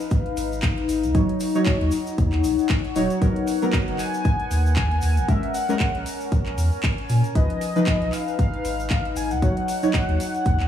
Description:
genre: deep house.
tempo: 116 BPM.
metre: 4/4.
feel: swing 57% on 16ths.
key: G# minor.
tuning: A4 = 442 Hz.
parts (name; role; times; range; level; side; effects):
deep mellow chord stab; stabs; 0.0-10.7 s; E#3 to C#5; -25 LUFS; right 1 dB; chorus, dub echo.
tube shaker; percussion; 0.0-10.6 s; none; -41 LUFS; left 4 dB; none.
warbly tape-like pad; texture; 0.0-10.7 s; B3 to G#5; -28 LUFS; left 5 dB; chorus, built-in reverb, sidechain pumping.
electronic kick drum; drums; 0.1-10.6 s; none; -22 LUFS; equal; studio reverb.
house drum kit; drums; 0.1-10.7 s; handclaps, hi-hat; -32 LUFS; right 1 dB; studio reverb.
warm sub bass; bass; 0.4-10.7 s; D#1 to A#2; -23 LUFS; equal; sidechain pumping.
warm velvety synth lead; melody; 4.0-10.7 s; D#5 to G#5; -28 LUFS; left 2 dB; chorus, tape echo.
room: light reverb.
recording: small room ambience.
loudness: -20 LUFS.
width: side -10 dB against mid.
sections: 0.0-10.7 A section.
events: none.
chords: 0.0 C#9 (rootless); 1.1 D#m7; 3.2 G#m9; 5.3 A#m7; 7.4 C#9; 9.4 D#m7.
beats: 0.11 0.63 | 1.15 1.67 2.18 2.70 | 3.22 3.73 4.25 4.77 | 5.29 5.80 6.32 6.84 | 7.35 7.87 8.39 8.91 | 9.42 9.94 10.46.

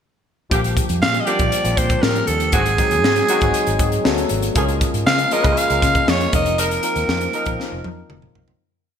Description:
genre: polished 1980s jazz-funk pop.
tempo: 119 BPM.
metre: 4/4.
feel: straight.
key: unclear.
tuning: A4 = 439 Hz.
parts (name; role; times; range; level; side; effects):
mellow horn section; second line; 0.5-7.5 s; D3 to Bb4; -27 LUFS; right 2 dB; ping-pong delay.
barky tine electric piano; accompaniment; 0.5-8.6 s; F3 to Bb4; -23 LUFS; left 3 dB; overdrive, lush chorus.
vintage muted fingered electric bass; bass; 0.5-8.5 s; F1 to Db3; -23 LUFS; right 1 dB; none.
crisp fusion drum kit; drums; 0.5-8.6 s; hi-hat, kick drum, snare drum, toms; -21 LUFS; left 1 dB; gated reverb.
growling alto saxophone; melody; 1.0-8.1 s; Ab4 to F5; -20 LUFS; right 2 dB; none.
room: moderate lush hall reverb, RT60 1.6 s, studio reverb.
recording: bright 1980s-style digital production.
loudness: -16 LUFS.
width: side -8 dB against mid.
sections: 0.5-8.6 verse.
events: fade-out 6.6-8.6; drum fill 7.6-8.6.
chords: 0.5 Bb6; 2.5 Ab7; 4.1 D6; 4.6 Db6; 6.3 F7sus4.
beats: | 0.52 1.02 1.53 2.03 | 2.54 3.05 3.55 4.06 | 4.56 5.07 5.58 6.08 | 6.59 7.09 7.60 8.10.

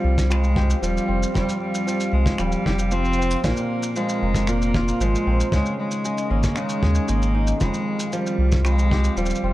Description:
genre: folktronica.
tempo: 115 BPM.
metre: 4/4.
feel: straight.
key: F minor.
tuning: A4 = 439 Hz.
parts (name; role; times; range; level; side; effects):
rich cello; melody; 0.0-9.5 s; G3 to C4; -25 LUFS; equal; tape echo.
warbly tape-like pad; sustained chords; 0.0-9.5 s; Eb3 to F5; -30 LUFS; right 1 dB; chorus, built-in reverb.
kora; arpeggios; 0.0-9.5 s; F2 to Ab4; -28 LUFS; right 1 dB; tape echo.
warm sub bass; bass; 0.0-9.5 s; Eb1 to Eb2; -21 LUFS; equal; tube saturation.
kick drum; drums; 0.2-9.0 s; none; -25 LUFS; equal; none.
shaker and finger snaps; drums; 0.2-9.4 s; none; -33 LUFS; equal; none.
room: light reverb.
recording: dark, warm production.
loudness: -19 LUFS.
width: side -16 dB against mid.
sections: 0.0-9.5 A section.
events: none.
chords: 0.0 Fmadd9; 3.4 Bbsus2; 5.5 Dbsus2; 7.6 Fmadd9.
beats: 0.30 0.83 | 1.35 1.87 2.39 2.91 | 3.44 3.96 4.48 5.00 | 5.52 6.04 6.57 7.09 | 7.61 8.13 8.65 9.18.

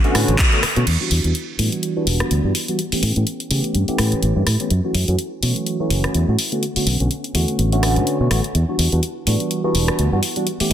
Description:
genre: filtered disco house.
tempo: 125 BPM.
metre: 4/4.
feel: swing 56% on 16ths.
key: E dorian.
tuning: A4 = 436 Hz.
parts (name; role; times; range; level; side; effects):
tine electric piano; accompaniment; 0.0-10.7 s; D3 to G4; -22 LUFS; equal; phaser, sidechain pumping, low-pass filter.
fingered electric bass; bass; 0.0-10.7 s; E1 to C#3; -18 LUFS; equal; sidechain pumping, low-pass filter.
house drum kit; drums; 0.0-10.7 s; crash cymbal, handclaps, hi-hat, rim click; -22 LUFS; left 1 dB; sidechain pumping on hats, sidechain pumping on cymbals.
electronic kick drum; drums; 0.4-0.5 s; none; -16 LUFS; equal; none.
room: moderate plate reverb, RT60 1.7 s.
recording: dense, heavily limited modern master.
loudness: -17 LUFS.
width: side -10 dB against mid.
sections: 0.9-10.7 A section.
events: band accent 0.4; filter sweep 0.9-10.7.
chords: 0.0 Bm9; 0.9 Em9; 2.8 A9; 4.7 F#m7; 6.4 Bm9; 8.5 Em9.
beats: 0.39 | 0.87 1.35 1.83 2.31 | 2.79 3.27 3.75 4.23 | 4.71 5.19 5.67 6.15 | 6.63 7.11 7.59 8.07 | 8.55 9.03 9.51 9.99 | 10.47.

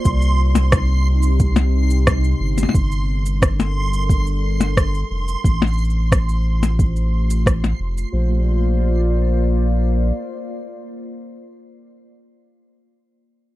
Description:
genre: folktronica.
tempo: 89 BPM.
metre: 4/4.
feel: straight.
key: Bb major.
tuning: A4 = 440 Hz.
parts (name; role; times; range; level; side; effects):
warbly tape-like pad; sustained chords; 0.0-11.5 s; C3 to D5; -27 LUFS; left 1 dB; chorus, built-in reverb.
concert harp; arpeggios; 0.0-1.8 s; none; barely audible; none; none.
backwards swelling texture; texture; 0.0-8.2 s; C6; -30 LUFS; right 3 dB; built-in reverb.
warm sub bass; bass; 0.1-10.1 s; F1 to C2; -18 LUFS; equal; none.
electronic kick drum; drums; 0.1-7.6 s; none; -18 LUFS; equal; overdrive.
electronic shaker, percussion blips and rim click; drums; 0.1-8.1 s; none; -19 LUFS; left 3 dB; none.
room: little or no reverb.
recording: dry, close 1970s-style studio recording.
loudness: -16 LUFS.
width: side -16 dB against mid.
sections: 0.0-8.1 A section; 8.1-10.8 B section.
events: filter sweep on ambient pad 0.0-8.1.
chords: 0.0 Cm; 2.7 Gmadd9; 5.4 Fadd9/A; 8.1 Bbadd9.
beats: | 0.05 0.72 1.40 2.07 | 2.75 3.42 4.09 4.77 | 5.44 6.12 6.79 7.46 | 8.14 8.81 9.49 10.16.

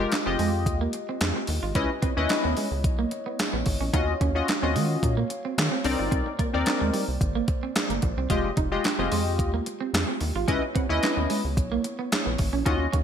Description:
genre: early-eighties boogie funk.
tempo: 110 BPM.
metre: 4/4.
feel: straight.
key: unclear.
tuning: A4 = 440 Hz.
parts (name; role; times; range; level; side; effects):
funky polysynth comp; accompaniment; 0.0-12.9 s; Ab3 to Gb5; -27 LUFS; left 4 dB; chorus.
glass harmonica; sustained chords; 0.0-13.0 s; Ab3 to F5; -36 LUFS; right 1 dB; none.
rubbery square bass; bass; 0.0-13.0 s; F1 to Eb3; -28 LUFS; equal; none.
electric guitar at the edge of break-up; riff; 0.1-13.0 s; G3 to F4; -32 LUFS; right 7 dB; lush chorus.
clean 12-bit digital drum machine; drums; 0.1-13.0 s; handclaps, hi-hat, kick drum, snare drum; -26 LUFS; equal; overdrive, gated reverb.
room: light reverb, digital ambience.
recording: bright 1980s-style digital production.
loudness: -23 LUFS.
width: side -8 dB against mid.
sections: 0.0-13.0 A section.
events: none.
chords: 0.0 Fm9; 1.8 Dbm9; 3.9 Ebm9; 5.8 Cm9; 8.3 Fm9; 10.5 Dbm9.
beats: 0.12 0.66 1.21 | 1.75 2.30 2.85 3.39 | 3.94 4.48 5.03 5.57 | 6.12 6.66 7.21 7.75 | 8.30 8.85 9.39 9.94 | 10.48 11.03 11.57 12.12 | 12.66.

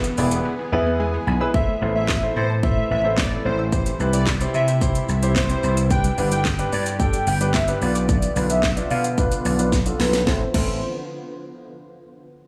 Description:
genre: dance-pop.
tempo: 110 BPM.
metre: 4/4.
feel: straight.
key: A minor.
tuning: A4 = 439 Hz.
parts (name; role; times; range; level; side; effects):
warm grand piano; accompaniment; 0.0-10.8 s; B3 to G#5; -29 LUFS; equal; sidechain pumping, low-pass filter.
shimmering ambient pad; sustained chords; 0.0-10.5 s; C3 to G#4; -35 LUFS; equal; none.
unison pluck; arpeggios; 0.0-10.8 s; D3 to E6; -36 LUFS; equal; none.
vintage slap bass; bass; 0.0-10.8 s; E1 to C3; -25 LUFS; equal; sidechain pumping.
house drum kit; drums; 0.0-10.7 s; crash cymbal, handclaps, hi-hat, kick drum, shaker, snare drum; -26 LUFS; equal; none.
airy dreamy lead; melody; 1.5-10.8 s; B4 to G5; -28 LUFS; equal; chorus, sidechain pumping, low-pass filter, tape echo.
room: light reverb, digital ambience.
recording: small room ambience.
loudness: -21 LUFS.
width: mono.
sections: 0.0-1.5 A section; 1.5-10.3 B section; 10.3-12.5 C section.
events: drums muted 0.5-1.5; grand piano fill 0.5-1.5; filter sweep 1.5-10.3; drum fill 9.7-10.3.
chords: 0.0 E; 1.5 Am; 3.7 C; 5.9 G; 7.8 Bdim; 10.3 Am.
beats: 0.45 1.00 | 1.54 2.09 2.63 3.18 | 3.73 4.27 4.82 5.36 | 5.91 6.45 7.00 7.54 | 8.09 8.63 9.18 9.72 | 10.27.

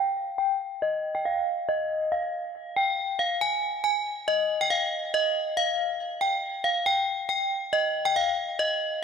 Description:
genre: hip hop.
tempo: 139 BPM.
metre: 4/4.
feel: half-time.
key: unclear.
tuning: A4 = 440 Hz.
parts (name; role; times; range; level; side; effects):
metallic FM bell; solo; 0.0-9.0 s; Eb5 to Ab5; -24 LUFS; left 1 dB; chorus, phaser, low-pass filter.
room: light reverb.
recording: none.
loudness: -24 LUFS.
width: side -6 dB against mid.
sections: 0.0-9.0 A section.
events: filter sweep on synth bell 0.0-3.4.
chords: none.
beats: 0.39 0.82 1.25 | 1.68 2.11 2.55 2.98 | 3.41 3.84 4.27 4.70 | 5.14 5.57 6.00 6.43 | 6.86 7.29 7.73 8.16 | 8.59.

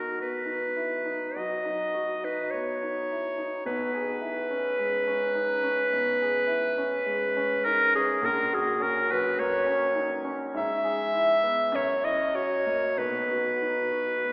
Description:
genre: classical, romantic duo for clarinet and grand piano.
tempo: 47-53 BPM.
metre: 4/4.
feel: rubato.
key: B major.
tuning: A4 = 438 Hz.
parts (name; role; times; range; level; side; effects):
clear clarinet; melody; 0.0-14.3 s; G#4 to E5; -25 LUFS; equal; none.
warm grand piano; accompaniment; 0.0-14.3 s; A#1 to G#4; -33 LUFS; equal; none.
room: wet church reverb, RT60 2.7 s.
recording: recorded in a church or concert hall, AM radio sound.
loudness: -24 LUFS.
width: side -27 dB against mid.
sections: 0.0-14.3 A section.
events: none.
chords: 0.0 B; 3.7 C#m7/B; 8.2 F#/A#; 10.6 E/G#; 11.8 F#7; 13.0 B.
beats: 0.20 1.36 2.54 | 3.68 4.82 5.94 7.08 | 8.24 9.39 10.56 11.75 | 13.00 14.26.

